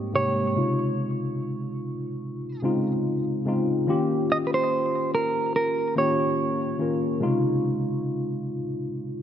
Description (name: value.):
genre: R&B.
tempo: 72 BPM.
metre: 4/4.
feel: swing 54% on 16ths.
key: unclear.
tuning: A4 = 438 Hz.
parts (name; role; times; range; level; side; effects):
clean electric guitar; melody; 0.0-9.2 s; Bb4 to Eb5; -26 LUFS; right 3 dB; ping-pong delay.
tine electric piano; accompaniment; 0.0-9.2 s; Ab2 to Bb4; -25 LUFS; left 1 dB; analog chorus.
room: moderate lush hall reverb, RT60 2.7 s.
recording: none.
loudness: -23 LUFS.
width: side -9 dB against mid.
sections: 0.0-9.2 A section.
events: none.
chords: 0.0 Abmaj9; 0.6 Dbmaj9; 3.9 Eb9; 7.2 Dbmaj9.